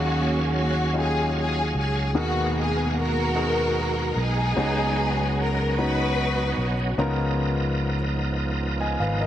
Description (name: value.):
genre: gospel.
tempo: 50 BPM (dotted quarters).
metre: 6/8.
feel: straight.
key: unclear.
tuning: A4 = 440 Hz.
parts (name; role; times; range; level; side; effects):
warm studio string section; melody; 0.0-7.0 s; A#3 to B4; -26 LUFS; equal; none.
warm concert grand piano; accompaniment; 0.0-9.3 s; B2 to A#5; -28 LUFS; left 2 dB; none.
bright tonewheel organ; sustained chords; 0.0-9.3 s; B2 to E#5; -31 LUFS; right 2 dB; slow rotary speaker, chorus vibrato.
fingered electric bass; bass; 0.0-9.3 s; G#1 to D#2; -26 LUFS; right 1 dB; none.
room: light reverb, studio reverb.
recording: none.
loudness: -22 LUFS.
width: side -11 dB against mid.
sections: 0.0-9.3 A section.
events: none.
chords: 0.0 D#m11; 2.2 G#m9/D#; 4.6 C#9sus4; 7.0 C#13.